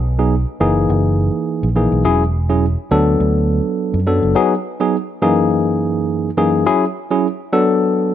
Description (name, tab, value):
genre	afrobeats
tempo	104 BPM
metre	4/4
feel	swing 55% on 16ths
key	B major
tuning	A4 = 440 Hz
part	fingered electric bass	bass	0.0-4.3 s	E1 to F#2	-16 LUFS	right 1 dB	none
part	tine electric piano	accompaniment	0.2-8.1 s	F#2 to A4	-15 LUFS	moving between left 4 dB and right 6 dB	auto-pan, low-pass filter
room	light reverb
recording	none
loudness	-14 LUFS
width	side -10 dB against mid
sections	0.0-4.4 A section; 4.4-8.1 B section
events	none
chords	0.0 B6; 0.6 F#13; 2.0 E69; 2.9 D6; 4.4 B6; 5.2 F#13; 6.7 E69; 7.5 D6